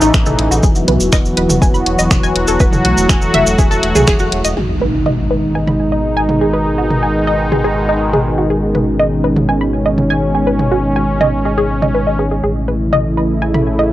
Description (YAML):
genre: melodic techno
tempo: 122 BPM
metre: 4/4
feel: straight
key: G# phrygian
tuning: A4 = 440 Hz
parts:
  - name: sweeping resonant pad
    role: sustained chords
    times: 0.0-13.9 s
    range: B2 to F#4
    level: -15 LUFS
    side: equal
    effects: chorus, sidechain pumping
  - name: analog pluck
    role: arpeggios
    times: 0.0-13.8 s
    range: D#4 to B5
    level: -18 LUFS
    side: equal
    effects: chorus, phaser, sidechain pumping, analog delay
  - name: round analog bass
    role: bass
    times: 0.0-13.9 s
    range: E1 to B1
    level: -20 LUFS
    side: equal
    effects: sidechain pumping
  - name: cabasa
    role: percussion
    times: 0.0-4.5 s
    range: none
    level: -22 LUFS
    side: right 1 dB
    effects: none
  - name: electronic kick drum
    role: drums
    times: 0.1-4.2 s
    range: none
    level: -13 LUFS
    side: equal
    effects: overdrive
  - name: house drum kit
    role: drums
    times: 0.1-13.6 s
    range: finger snaps, hi-hat, toms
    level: -19 LUFS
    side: right 1 dB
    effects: none
  - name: impact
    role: sound effects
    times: 4.6-6.5 s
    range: none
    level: -24 LUFS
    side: equal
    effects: none
room: little or no reverb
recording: dry, gritty hardware recording, cassette tape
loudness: -12 LUFS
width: side -14 dB against mid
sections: 0.0-4.6 A section; 4.6-13.9 B section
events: filter sweep on synth arpeggio sound 0.0-4.6; band accent 4.1; impact 4.6-6.5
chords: 0.0 A; 0.6 Esus2; 4.6 G#m; 12.4 A